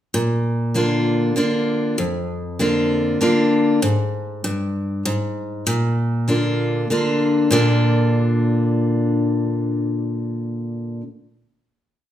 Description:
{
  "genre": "country",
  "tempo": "98 BPM",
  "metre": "3/4",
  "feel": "straight",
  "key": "Bb mixolydian",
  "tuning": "A4 = 440 Hz",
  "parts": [
    { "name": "picked steel-string acoustic guitar", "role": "solo", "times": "0.1-11.0 s", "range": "F2 to F4", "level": "-18 LUFS", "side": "equal", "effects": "none" }
  ],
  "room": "wet large studio reverb, RT60 0.9 s",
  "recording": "band playing live in one room",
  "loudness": "-18 LUFS",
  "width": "side -11 dB against mid",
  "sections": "0.1-7.5 interlude; 7.5-11.2 final chord",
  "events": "none",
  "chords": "0.1 Bb; 3.8 N.C.; 5.7 Bb"
}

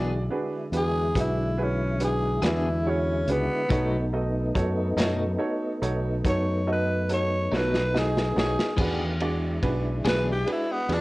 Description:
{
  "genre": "slow blues",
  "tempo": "47 BPM (dotted quarters)",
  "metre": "12/8",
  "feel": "straight",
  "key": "E mixolydian",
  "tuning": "A4 = 440 Hz",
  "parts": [
    { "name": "clean electric guitar", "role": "accompaniment", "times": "0.0-10.3 s", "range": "B2 to G#4", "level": "-31 LUFS", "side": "left 2 dB", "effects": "tremolo, plate reverb" },
    { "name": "clear baby grand piano", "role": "accompaniment", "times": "0.0-11.0 s", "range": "A3 to D#5", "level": "-30 LUFS", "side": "right 2 dB", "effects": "plate reverb" },
    { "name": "tonewheel organ", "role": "sustained chords", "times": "0.0-11.0 s", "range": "D3 to F5", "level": "-32 LUFS", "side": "equal", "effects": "slow rotary speaker, overdrive, chorus vibrato" },
    { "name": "fingered electric bass", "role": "bass", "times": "0.0-11.0 s", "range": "B1 to F#2", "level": "-28 LUFS", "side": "equal", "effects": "tube saturation" },
    { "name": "crunchy breakbeat drum kit", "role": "drums", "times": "0.7-11.0 s", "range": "crash cymbal, hi-hat, kick drum, ride cymbal, snare drum", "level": "-29 LUFS", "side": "equal", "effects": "none" },
    { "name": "growling tenor saxophone", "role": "melody", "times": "0.8-11.0 s", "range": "B3 to C#5", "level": "-28 LUFS", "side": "equal", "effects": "plate reverb" }
  ],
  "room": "moderate studio ambience, RT60 0.5 s",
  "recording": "worn, warbling old tape, cassette tape, warbly pitch drift",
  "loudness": "-23 LUFS",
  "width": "side -20 dB against mid",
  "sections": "0.0-8.8 A section; 8.8-11.0 B section",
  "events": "drum fill 7.5-8.8; tenor saxophone solo 8.8-11.0",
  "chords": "0.0 E7; 3.7 B7; 8.8 E7"
}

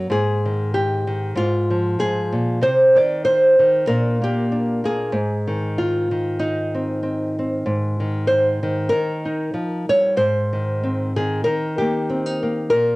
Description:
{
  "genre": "folk, solo fingerstyle acoustic guitar",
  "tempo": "95 BPM",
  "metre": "4/4",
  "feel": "swing 55% on 8ths",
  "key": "unclear",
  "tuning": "A4 = 441 Hz",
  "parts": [
    { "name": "nylon-string guitar", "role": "solo", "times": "0.0-13.0 s", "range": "Ab2 to D5", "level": "-18 LUFS", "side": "equal", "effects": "none" }
  ],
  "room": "wet small room reverb, RT60 0.6 s",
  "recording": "home recording on cassette",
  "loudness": "-18 LUFS",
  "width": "side -21 dB against mid",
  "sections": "0.0-13.0 A section",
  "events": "none",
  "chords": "0.1 Ab5; 1.4 Fm/Ab; 2.6 Cm; 3.9 Gm/Bb; 5.1 Ab; 8.9 Eb; 10.2 Ab; 11.5 Eb"
}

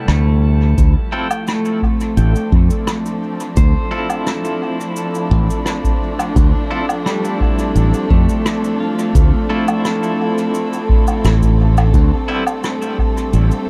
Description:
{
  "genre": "ambient dub",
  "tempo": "86 BPM",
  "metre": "4/4",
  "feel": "straight",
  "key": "D minor",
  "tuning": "A4 = 440 Hz",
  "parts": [
    { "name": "dark studio string section", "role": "sustained chords", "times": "0.0-13.7 s", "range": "C3 to A4", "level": "-24 LUFS", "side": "equal", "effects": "none" },
    { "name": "pedal steel guitar", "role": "arpeggios", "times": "0.0-12.8 s", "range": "G3 to G5", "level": "-25 LUFS", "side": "equal", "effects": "tape echo" },
    { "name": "semi-hollow electric guitar", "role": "stabs", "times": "0.0-12.4 s", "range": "G3 to A4", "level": "-29 LUFS", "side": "equal", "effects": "tremolo, dub echo" },
    { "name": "drifting glass-harmonics texture", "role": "texture", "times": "0.0-0.8 s", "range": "A5", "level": "-42 LUFS", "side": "equal", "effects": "chorus, built-in reverb" },
    { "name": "modern bright fingered electric bass", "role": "bass", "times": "0.1-13.5 s", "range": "A1 to F2", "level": "-15 LUFS", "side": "equal", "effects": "none" },
    { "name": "rim click, cabasa and woodblock", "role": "drums", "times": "0.1-13.7 s", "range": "none", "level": "-28 LUFS", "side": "equal", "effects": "dub echo" },
    { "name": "electronic kick drum", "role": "drums", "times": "0.8-13.1 s", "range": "none", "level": "-18 LUFS", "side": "equal", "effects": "none" }
  ],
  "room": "small room ambience",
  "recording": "echo-heavy mix",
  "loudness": "-16 LUFS",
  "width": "mono",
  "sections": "0.8-13.7 A section",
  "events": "break 0.0-0.8",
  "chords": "0.0 Am7; 0.8 Dm7; 11.9 Am7"
}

